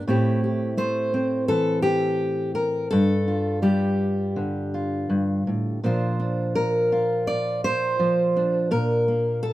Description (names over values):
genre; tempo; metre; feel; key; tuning
folk, solo fingerstyle acoustic guitar; 84 BPM; 4/4; straight; unclear; A4 = 441 Hz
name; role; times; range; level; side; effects
fingerpicked steel-string acoustic guitar; solo; 0.0-9.5 s; G2 to D5; -21 LUFS; equal; none
room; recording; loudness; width
moderate studio ambience, RT60 0.5 s; band playing live in one room; -21 LUFS; side -15 dB against mid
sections
0.0-5.8 A section; 5.8-9.5 B section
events
none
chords
0.1 Am7; 2.9 G5; 5.8 Bbadd9; 8.7 Gmadd9/Bb (rootless)